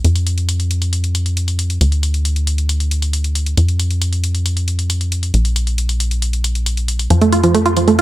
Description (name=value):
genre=uplifting trance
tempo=136 BPM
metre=4/4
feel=straight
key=unclear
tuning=A4 = 440 Hz
part: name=tight sequencer bass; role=bass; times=0.0-8.0 s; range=Bb1 to F2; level=-16 LUFS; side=equal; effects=none
part: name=electronic hi-hat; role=drums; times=0.0-8.0 s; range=none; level=-23 LUFS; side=left 2 dB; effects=none
part: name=wide unison pluck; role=arpeggios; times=7.1-8.0 s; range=F3 to F4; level=-12 LUFS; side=right 3 dB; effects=digital delay
room=light reverb, digital ambience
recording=none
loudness=-14 LUFS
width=side -15 dB against mid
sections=0.0-8.0 A section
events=none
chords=none